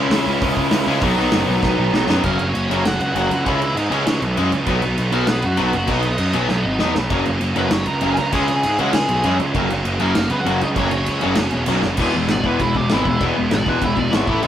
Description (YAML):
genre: punk rock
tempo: 197 BPM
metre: 4/4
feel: straight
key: unclear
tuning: A4 = 439 Hz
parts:
  - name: overdriven semi-hollow guitar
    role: riff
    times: 0.0-14.5 s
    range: E2 to C#4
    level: -22 LUFS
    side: left 6 dB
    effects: none
  - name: scooped high-gain guitar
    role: riff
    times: 0.0-14.5 s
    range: F#2 to G#4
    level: -25 LUFS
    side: right 1 dB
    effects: distortion
  - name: tight distorted guitar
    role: riff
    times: 0.0-14.5 s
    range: F#2 to F#4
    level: -25 LUFS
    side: right 6 dB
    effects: distortion
  - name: fuzz picked electric bass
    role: bass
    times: 0.0-14.5 s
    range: E1 to G#2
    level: -22 LUFS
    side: right 1 dB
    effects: overdrive
  - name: loose indie drum kit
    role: drums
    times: 0.1-14.5 s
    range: crash cymbal, hi-hat, kick drum, snare drum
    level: -24 LUFS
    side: equal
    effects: none
  - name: nasal lead guitar with a parked wah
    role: melody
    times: 2.2-14.4 s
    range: A#3 to A#5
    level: -23 LUFS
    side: equal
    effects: overdrive
room: moderate studio reverb, RT60 0.5 s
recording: rough rehearsal-room recording, warm saturation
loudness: -16 LUFS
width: side -10 dB against mid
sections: 0.0-2.2 A section; 2.2-12.0 B section; 12.0-14.5 C section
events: drum fill 1.6-2.2, 6.5-7.1, 11.8; half time 2.2-12.0; lead electric guitar solo 12.0-14.5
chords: 0.0 C#m; 1.0 B; 2.2 F#; 3.5 C#m; 4.7 B; 7.1 F#; 8.3 C#m; 9.6 F#; 12.0 E; 14.3 A5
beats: 0.12 0.42 0.72 | 1.03 1.33 1.63 1.94 | 2.24 2.55 2.85 3.15 | 3.46 3.76 4.07 4.37 | 4.68 4.98 5.29 5.59 | 5.89 6.20 6.50 6.81 | 7.11 7.42 7.72 8.03 | 8.33 8.64 8.94 9.24 | 9.55 9.86 10.16 10.46 | 10.77 11.07 11.38 11.68 | 11.99 12.29 12.60 12.90 | 13.21 13.52 13.82 14.12 | 14.43